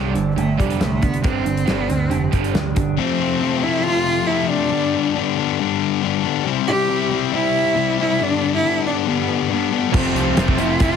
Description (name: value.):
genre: quiet-loud alternative rock.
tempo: 138 BPM.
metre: 4/4.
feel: straight.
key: unclear.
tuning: A4 = 439 Hz.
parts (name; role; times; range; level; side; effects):
rich cello; melody; 0.0-11.0 s; G3 to G4; -21 LUFS; right 1 dB; slapback echo.
electric guitar through a small old amp; arpeggios; 0.0-3.0 s; G2 to G4; -28 LUFS; equal; wide subtle chorus.
distorted electric guitar; riff; 0.0-3.0, 9.9-11.0 s; F2 to C4; -23 LUFS; right 12 dB; distortion.
growling picked electric bass; bass; 0.0-3.0, 9.9-11.0 s; F1 to D2; -24 LUFS; equal; overdrive.
big rock drum kit; drums; 0.2-2.9, 9.9-10.9 s; crash cymbal, hi-hat, kick drum, snare drum; -21 LUFS; equal; none.
thick fuzz guitar; riff; 3.0-11.0 s; F2 to E4; -20 LUFS; left 14 dB; distortion.
tight distorted guitar; riff; 9.9-11.0 s; F2 to C4; -26 LUFS; equal; distortion.
room: light reverb.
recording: heavily compressed radio sound, multiband compression.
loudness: -17 LUFS.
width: side -7 dB against mid.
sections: 0.0-3.0 A section; 3.0-11.0 B section.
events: none.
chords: 0.0 Gsus4; 3.0 F; 4.7 G; 6.5 C; 8.2 G; 9.9 F.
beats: 0.37 0.81 | 1.24 1.68 2.11 2.55 | 2.98 3.42 3.85 4.29 | 4.72 5.16 5.59 6.02 | 6.46 6.89 7.33 7.76 | 8.19 8.63 9.06 9.49 | 9.93 10.36 10.80.